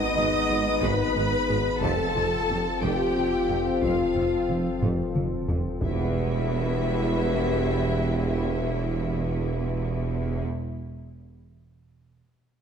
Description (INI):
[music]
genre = cinematic, hybrid orchestral and electronic film score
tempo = 60 BPM (dotted quarters)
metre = 6/8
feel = straight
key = E phrygian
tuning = A4 = 440 Hz
[part]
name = rich symphonic violin section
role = melody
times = 0.0-10.4 s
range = E5 to D#6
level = -33 LUFS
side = left 4 dB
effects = none
[part]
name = warm chamber violin section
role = second line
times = 0.0-10.4 s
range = E4 to D#5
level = -34 LUFS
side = left 1 dB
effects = none
[part]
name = rich symphonic viola section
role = accompaniment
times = 0.0-10.4 s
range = E4 to D#5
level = -33 LUFS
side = equal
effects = none
[part]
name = dark French horn section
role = sustained chords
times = 0.0-10.4 s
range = B3 to G4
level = -31 LUFS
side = left 4 dB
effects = none
[part]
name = warm analog pad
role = sustained chords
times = 0.0-10.4 s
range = F3 to B4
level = -32 LUFS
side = left 2 dB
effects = chorus
[part]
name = thumb-piano-like synth pluck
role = arpeggios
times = 0.0-5.7 s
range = F3 to G#4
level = -36 LUFS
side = left 3 dB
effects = chorus, ping-pong delay
[part]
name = smooth gliding synth bass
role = riff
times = 0.0-5.7 s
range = F2 to G#3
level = -34 LUFS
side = right 3 dB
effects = none
[part]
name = warm sub bass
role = bass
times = 0.0-10.4 s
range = E1 to G#1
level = -37 LUFS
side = equal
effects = none
[part]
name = clear symphonic cello section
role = bass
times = 0.2-10.4 s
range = E2 to G#2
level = -34 LUFS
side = right 3 dB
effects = none
[part]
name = clear symphonic double bass section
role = bass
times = 0.2-10.4 s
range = E1 to G#1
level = -32 LUFS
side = right 4 dB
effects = none
[part]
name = warm tuba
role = bass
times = 0.2-10.4 s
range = E1 to G#1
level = -32 LUFS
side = right 4 dB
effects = none
[part]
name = taiko ensemble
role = drums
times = 0.2-7.1 s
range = none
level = -32 LUFS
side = equal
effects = none
[sound]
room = wet concert hall reverb, RT60 1.9 s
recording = none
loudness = -23 LUFS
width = side -7 dB against mid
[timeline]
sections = 0.0-5.8 A section; 5.8-9.8 B section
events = drum fill 4.8-5.8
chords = 0.0 G#m; 1.8 F; 5.8 Em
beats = 0.83 | 1.83 2.83 | 3.83 4.83 | 5.83 6.83 | 7.83 8.83